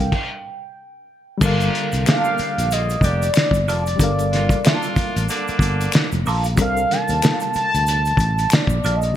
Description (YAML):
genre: R&B, neo-soul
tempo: 93 BPM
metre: 4/4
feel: swing 58% on 16ths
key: G minor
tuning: A4 = 440 Hz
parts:
  - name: mellow horn-like synth lead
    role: melody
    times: 0.0-9.2 s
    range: D5 to A5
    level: -22 LUFS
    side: right 1 dB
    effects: chorus, ping-pong delay
  - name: barky reed electric piano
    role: accompaniment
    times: 0.0-9.2 s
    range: C3 to F5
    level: -27 LUFS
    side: left 3 dB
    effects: overdrive, fast tremolo
  - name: sustaining fretless electric bass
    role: bass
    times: 0.0-9.1 s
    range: F1 to Eb2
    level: -22 LUFS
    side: equal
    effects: none
  - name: cloth-damped thuddy drum kit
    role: drums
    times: 0.0-9.2 s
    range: crash cymbal, hi-hat, kick drum, snare drum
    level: -20 LUFS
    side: equal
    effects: gated reverb
  - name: clear horn section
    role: stabs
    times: 1.4-6.1 s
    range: D3 to G4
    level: -26 LUFS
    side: right 2 dB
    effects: none
  - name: egg shaker and finger snaps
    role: percussion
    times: 1.4-9.1 s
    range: none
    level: -32 LUFS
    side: equal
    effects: none
  - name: electric guitar through a small old amp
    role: second line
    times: 2.1-9.0 s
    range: Bb3 to A4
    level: -28 LUFS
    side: right 3 dB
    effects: wah, ping-pong delay
room: light reverb, small room ambience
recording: bright 1980s-style digital production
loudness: -16 LUFS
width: side -11 dB against mid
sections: 0.0-1.4 A section; 1.4-9.2 B section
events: stop 0.1-1.4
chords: 0.0 C13sus4; 0.8 N.C.; 1.4 Gm9; 6.6 C13sus4